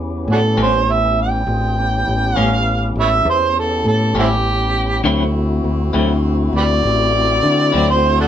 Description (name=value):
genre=slow blues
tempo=67 BPM (dotted quarters)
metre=12/8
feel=straight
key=unclear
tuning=A4 = 440 Hz
part: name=tonewheel organ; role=sustained chords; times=0.0-8.3 s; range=A3 to G#4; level=-24 LUFS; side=left 1 dB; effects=slow rotary speaker
part: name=fingered electric bass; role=bass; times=0.0-8.3 s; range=A1 to D3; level=-18 LUFS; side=left 1 dB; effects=none
part: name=overdriven harmonica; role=melody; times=0.3-8.3 s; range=C4 to G5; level=-17 LUFS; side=right 2 dB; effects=none
part: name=clean electric guitar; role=accompaniment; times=0.6-7.9 s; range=A2 to E4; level=-19 LUFS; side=left 2 dB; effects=tremolo
part: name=mellow saxophone section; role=sustained chords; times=5.0-8.3 s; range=C4 to F#4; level=-26 LUFS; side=left 3 dB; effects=none
room=moderate small room reverb, RT60 0.5 s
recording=band playing live in one room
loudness=-14 LUFS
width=side -10 dB against mid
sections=0.0-8.3 A section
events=harmonica solo 0.0-8.3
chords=0.0 A9; 5.0 D9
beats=0.58 | 1.48 2.37 3.26 4.15 | 5.05 5.94 6.83 7.73